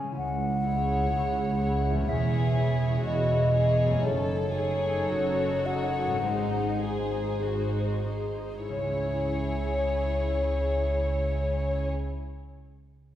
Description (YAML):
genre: classical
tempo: 45-63 BPM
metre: 4/4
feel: rubato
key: C# minor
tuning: A4 = 438 Hz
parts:
  - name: mellow silver concert flute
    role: second line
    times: 0.0-11.9 s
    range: C#5 to G#5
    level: -29 LUFS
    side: left 2 dB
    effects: none
  - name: concert harp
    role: arpeggios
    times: 0.0-12.6 s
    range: E2 to C#5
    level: -37 LUFS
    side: left 3 dB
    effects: none
  - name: warm chamber double bass section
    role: bass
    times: 0.2-11.9 s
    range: E1 to C#2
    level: -30 LUFS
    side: right 1 dB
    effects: none
  - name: warm symphonic cello section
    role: bass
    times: 0.2-11.9 s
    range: C#2 to C#3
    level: -33 LUFS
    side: right 2 dB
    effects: none
  - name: warm chamber violin section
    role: melody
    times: 0.6-11.9 s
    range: B#4 to C#5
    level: -39 LUFS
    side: left 4 dB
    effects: none
  - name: dark chamber viola section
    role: accompaniment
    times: 0.6-11.9 s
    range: D#4 to A4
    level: -35 LUFS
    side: right 1 dB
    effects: none
  - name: warm chamber violin section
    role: second line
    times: 2.1-11.9 s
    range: D#4 to A4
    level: -37 LUFS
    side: left 3 dB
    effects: none
room: wet scoring stage reverb, RT60 1.7 s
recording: heard from further back in the room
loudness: -25 LUFS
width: side -12 dB against mid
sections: 0.2-8.7 A section; 8.7-13.2 B section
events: slowing down 0.0-8.7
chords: 0.2 C#m; 2.1 C#m/E; 4.0 D#m7b5/F#; 6.2 G#; 8.7 C#m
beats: | 0.16 1.12 2.08 3.05 | 4.04 5.10 6.23 7.41 | 8.69 9.90 11.11 12.30